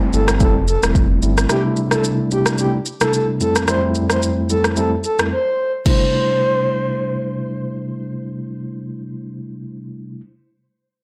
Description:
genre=afrobeats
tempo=110 BPM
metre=4/4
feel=swing 55% on 16ths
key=C major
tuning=A4 = 440 Hz
part: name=mellow tine electric piano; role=accompaniment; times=0.0-10.2 s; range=F2 to E4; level=-23 LUFS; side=equal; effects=none
part: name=downlifter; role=sound effects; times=0.0-1.5 s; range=none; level=-39 LUFS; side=equal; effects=none
part: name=breathy flute-like synth lead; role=melody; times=0.1-7.5 s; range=G4 to C5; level=-23 LUFS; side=equal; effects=chorus, digital delay
part: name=sub bass with octave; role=bass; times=0.1-1.5 s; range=E1 to G1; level=-21 LUFS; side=equal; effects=none
part: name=afro-pop drum kit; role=drums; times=0.1-6.0 s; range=crash cymbal, kick drum, rim click, shaker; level=-22 LUFS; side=equal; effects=soft clipping on snare
room=moderate digital room reverb, RT60 0.9 s, digital ambience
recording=blown-out, overdriven recording, overdrive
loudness=-18 LUFS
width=mono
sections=0.0-5.9 A section; 5.9-10.2 B section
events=drums muted 5.3-5.9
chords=0.0 Fmaj7; 1.5 C69; 3.4 Fmaj7; 5.9 C69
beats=0.41 0.95 | 1.50 2.04 2.59 3.13 | 3.68 4.22 4.77 5.31 | 5.86 6.41 6.95 7.50 | 8.04 8.59 9.13 9.68

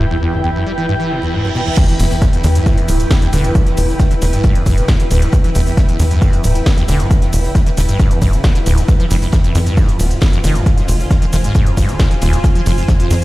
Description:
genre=driving peak-time techno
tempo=135 BPM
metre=4/4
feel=straight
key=E minor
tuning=A4 = 437 Hz
part: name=acid bass, saw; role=riff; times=0.0-13.2 s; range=D2 to G3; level=-18 LUFS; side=equal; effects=wide subtle chorus, sidechain pumping, tape echo
part: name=tight sequencer bass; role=bass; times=0.0-13.2 s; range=D1 to F2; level=-16 LUFS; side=equal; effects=tube saturation, sidechain pumping
part: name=granular cloud pad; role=texture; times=0.0-13.2 s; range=E4 to Ab5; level=-22 LUFS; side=equal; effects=built-in reverb, sidechain pumping
part: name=reverse cymbal and impact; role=sound effects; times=1.1-3.6 s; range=none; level=-27 LUFS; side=right 1 dB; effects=none
part: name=electronic kick drum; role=drums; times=1.8-13.0 s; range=none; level=-13 LUFS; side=equal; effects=none
part: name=techno drum kit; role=drums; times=1.8-13.2 s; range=crash cymbal, hi-hat, ride cymbal, shaker, snare drum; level=-26 LUFS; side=equal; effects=none
part: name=warm soul drum kit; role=drums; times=1.8-13.2 s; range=hi-hat, snare drum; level=-36 LUFS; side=left 2 dB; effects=none
room=little or no reverb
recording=played on a big sound system in a bare room, stone room reverb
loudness=-11 LUFS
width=side -18 dB against mid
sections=0.0-1.8 A section; 1.8-13.2 B section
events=reverse cymbal 1.1-1.8; drop 1.8-13.2; impact 1.8-3.6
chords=0.0 Em; 8.9 Fm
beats=| 0.00 0.44 0.88 1.33 | 1.77 2.22 2.66 3.11 | 3.55 4.00 4.44 4.88 | 5.33 5.77 6.22 6.66 | 7.11 7.55 8.00 8.44 | 8.88 9.33 9.77 10.22 | 10.66 11.11 11.55 12.00 | 12.44 12.88

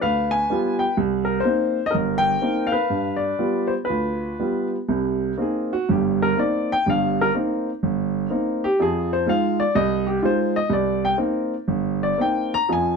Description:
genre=solo jazz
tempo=124 BPM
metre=4/4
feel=swing 66% on 8ths, rubato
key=C minor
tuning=A4 = 440 Hz
part: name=warm upright piano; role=solo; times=0.0-13.0 s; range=G1 to Bb5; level=-20 LUFS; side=equal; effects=none
room=light reverb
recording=none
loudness=-20 LUFS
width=side -5 dB against mid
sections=0.0-4.9 A section; 4.9-13.0 B section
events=upright piano solo 4.9-13.0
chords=0.0 G7; 1.0 Cm7; 2.9 G7; 4.9 Cm7; 8.8 Fm7; 10.7 Cm7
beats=0.01 0.48 | 0.96 1.44 1.93 2.41 | 2.89 3.37 3.87 4.38 | 4.89 5.39 5.89 6.38 | 6.87 7.36 7.84 8.33 | 8.81 9.29 9.77 10.25 | 10.72 11.21 11.70 12.19 | 12.69

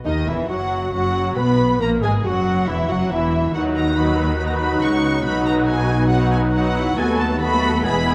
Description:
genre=quick classical-period movement for symphony orchestra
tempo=139 BPM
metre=4/4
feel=straight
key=B major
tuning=A4 = 440 Hz
part: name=mellow hollow large flute ensemble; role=second line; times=0.0-8.1 s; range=D#5 to A6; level=-33 LUFS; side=equal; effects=none
part: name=mellow French horn section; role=sustained chords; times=0.0-8.1 s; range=D#3 to D#4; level=-27 LUFS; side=equal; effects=none
part: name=warm studio violin section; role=melody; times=0.1-8.1 s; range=D#5 to C#6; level=-28 LUFS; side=equal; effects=none
part: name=dark studio violin section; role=second line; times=0.1-8.1 s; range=D#4 to B4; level=-29 LUFS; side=equal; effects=none
part: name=warm clarinet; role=second line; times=0.1-8.1 s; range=B3 to B4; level=-28 LUFS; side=equal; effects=none
part: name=rich chamber viola section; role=accompaniment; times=0.1-8.1 s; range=D#3 to F#4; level=-30 LUFS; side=equal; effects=none
part: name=rich studio cello section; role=bass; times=0.1-8.1 s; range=D#2 to D#3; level=-26 LUFS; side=equal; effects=none
part: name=rich studio double bass section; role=bass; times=0.1-8.1 s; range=E1 to D#2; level=-27 LUFS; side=equal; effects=none
room=moderate scoring stage reverb, RT60 1.9 s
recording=none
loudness=-19 LUFS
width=mono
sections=0.1-8.1 A section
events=none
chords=0.1 B; 1.8 F#7; 3.5 B/D#; 5.2 B; 7.0 B7/D#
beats=| 0.05 0.49 0.93 1.37 | 1.81 2.24 2.67 3.11 | 3.54 3.96 4.39 4.82 | 5.25 5.67 6.10 6.53 | 6.96 7.40 7.83

